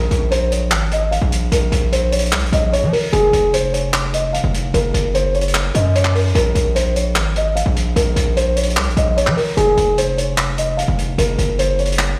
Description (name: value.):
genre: hip hop, trap.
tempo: 149 BPM.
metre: 4/4.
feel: half-time.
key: Bb minor.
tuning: A4 = 444 Hz.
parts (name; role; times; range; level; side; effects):
dark concert grand piano; melody; 0.0-12.2 s; Ab4 to F5; -21 LUFS; equal; low-pass filter, delay.
distorted 808-style bass; bass; 0.0-12.2 s; F1 to F3; -20 LUFS; equal; distortion.
vintage drum kit; drums; 0.1-12.1 s; handclaps, hi-hat; -25 LUFS; equal; none.
room: studio ambience.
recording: played on a big sound system in a bare room, stone room reverb.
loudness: -17 LUFS.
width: mono.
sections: 0.0-12.2 A section.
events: filter sweep on grand piano 0.0-12.2.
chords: 0.0 Bbm; 3.1 Fm; 4.7 Gb; 6.3 Bbm; 9.6 Fm; 11.2 Gb.